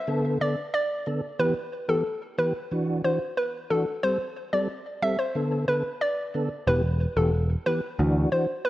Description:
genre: dancehall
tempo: 91 BPM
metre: 4/4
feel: straight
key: E minor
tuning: A4 = 438 Hz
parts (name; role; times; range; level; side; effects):
- hollow square pluck; melody; 0.0-8.7 s; A4 to E5; -27 LUFS; equal; chorus
- mellow tonewheel organ; accompaniment; 0.1-8.5 s; D3 to A4; -28 LUFS; equal; chorus vibrato, slow rotary speaker
- picked electric bass; bass; 6.7-8.2 s; E1 to D2; -23 LUFS; equal; none
room: moderate plate reverb, RT60 2.4 s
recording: worn, warbling old tape, cassette tape, warbly pitch drift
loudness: -24 LUFS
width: side -16 dB against mid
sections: 0.0-8.7 A section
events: none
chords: 0.1 Bm7; 1.4 Em; 2.7 Dadd9; 4.0 Am7; 5.4 Bm7; 6.7 Em; 8.0 Dadd9

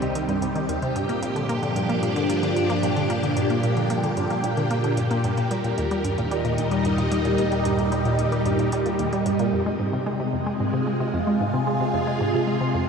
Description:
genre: ambient, sequencer-driven space music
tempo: 112 BPM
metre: 4/4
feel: straight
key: F dorian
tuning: A4 = 440 Hz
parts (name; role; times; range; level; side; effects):
- phased string machine; sustained chords; 0.0-12.9 s; Bb2 to Ab4; -23 LUFS; equal; ensemble chorus, phaser, shimmer reverb
- resonant blip pluck; riff; 0.0-12.8 s; C2 to Bb3; -26 LUFS; equal; chorus, analog delay, shimmer reverb
- analog drone; bass; 0.0-9.5 s; C2 to G2; -33 LUFS; equal; chorus
- electronic hi-hat and bongos; percussion; 0.0-9.5 s; none; -41 LUFS; equal; analog delay
room: wet huge ambient reverb, RT60 7.9 s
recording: none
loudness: -21 LUFS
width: side -6 dB against mid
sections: 0.0-9.5 A section; 9.5-12.9 B section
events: none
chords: 0.0 Cm; 1.0 Gm7; 5.2 Eb; 9.5 Fm

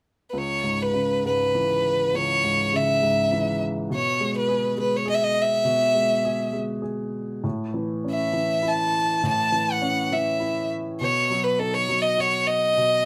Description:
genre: acoustic folk-pop ballad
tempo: 101 BPM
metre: 3/4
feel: straight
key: C# minor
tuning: A4 = 440 Hz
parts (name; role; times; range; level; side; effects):
- clear violin; melody; 0.3-13.1 s; A4 to A5; -24 LUFS; equal; none
- clear upright piano; accompaniment; 0.3-13.1 s; C#2 to G#4; -29 LUFS; equal; none
room: moderate studio reverb, RT60 0.7 s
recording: band playing live in one room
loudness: -23 LUFS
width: mono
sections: 0.3-13.1 A section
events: none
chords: 0.3 C#m7; 3.9 E/B; 7.4 A; 11.0 B

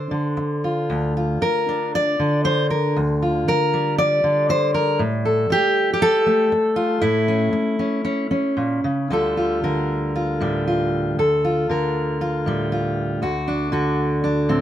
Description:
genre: folk, solo fingerstyle acoustic guitar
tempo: 117 BPM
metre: 4/4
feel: rubato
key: D minor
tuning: A4 = 440 Hz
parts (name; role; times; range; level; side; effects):
- fingerpicked steel-string acoustic guitar; solo; 0.0-14.6 s; D2 to D5; -18 LUFS; equal; none
room: light reverb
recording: none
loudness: -18 LUFS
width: side -11 dB against mid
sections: 0.0-9.1 A section; 9.1-14.6 B section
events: none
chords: 0.0 Dm7; 0.9 Bb/D; 3.0 Gm7/D; 5.0 A7; 9.1 Dm; 13.2 D

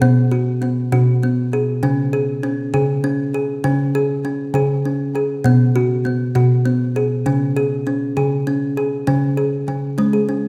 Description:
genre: world meditative, meditative tuned percussion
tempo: 66 BPM (dotted quarters)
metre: 6/8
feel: straight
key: unclear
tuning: A4 = 443 Hz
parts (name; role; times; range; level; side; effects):
- kalimba; solo; 0.0-10.5 s; B2 to G#4; -18 LUFS; equal; delay
room: wet recital hall reverb, RT60 1.5 s, studio ambience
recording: none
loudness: -18 LUFS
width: mono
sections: 0.0-9.1 A section; 9.1-10.5 B section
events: none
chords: 0.0 B5; 1.8 C#5; 5.4 B5; 7.3 C#5

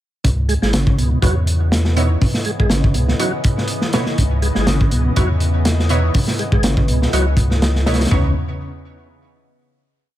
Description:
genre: breakbeat, breaks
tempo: 122 BPM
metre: 4/4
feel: swing 54% on 16ths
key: C# minor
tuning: A4 = 440 Hz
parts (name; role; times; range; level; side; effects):
- lush unison pad; sustained chords; 0.2-8.3 s; C#3 to D#5; -27 LUFS; left 1 dB; chorus, phaser, sidechain pumping
- tonewheel organ; riff; 0.2-8.3 s; B2 to G#3; -23 LUFS; equal; chorus vibrato, fast rotary speaker, digital delay
- saturated sub bass; bass; 0.2-8.3 s; G#1 to E2; -18 LUFS; equal; none
- crunchy breakbeat drum kit; drums; 0.2-8.2 s; hi-hat, kick drum, snare drum, toms; -18 LUFS; equal; none
- orchestra-hit-like synth stab; stabs; 1.2-8.3 s; B3 to C#5; -25 LUFS; right 2 dB; built-in reverb, digital delay
room: small room ambience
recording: none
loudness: -14 LUFS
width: side -13 dB against mid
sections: 0.2-8.1 drop; 8.1-10.1 final chord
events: drop 0.2-8.1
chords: 0.2 C#m9

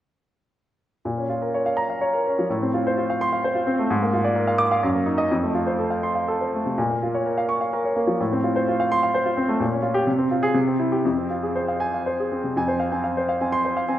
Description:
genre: classical, virtuoso piano study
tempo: 118-130 BPM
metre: 3/4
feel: rubato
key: Bb minor, F minor from 9.6 s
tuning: A4 = 441 Hz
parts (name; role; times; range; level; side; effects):
- clear baby grand piano; solo; 1.1-14.0 s; F2 to D6; -20 LUFS; equal; none
room: moderate concert hall reverb, RT60 1.9 s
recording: none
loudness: -20 LUFS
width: side -12 dB against mid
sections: 1.0-12.6 A section; 12.6-14.0 B section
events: none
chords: 1.0 Bbm; 2.5 F/A; 3.9 Bb7/Ab; 4.8 Ebm/Gb; 5.3 F; 6.8 Bbm; 8.2 F/A; 9.6 Gm7b5/Bb; 10.1 Fm/C; 10.6 C; 11.0 Fm

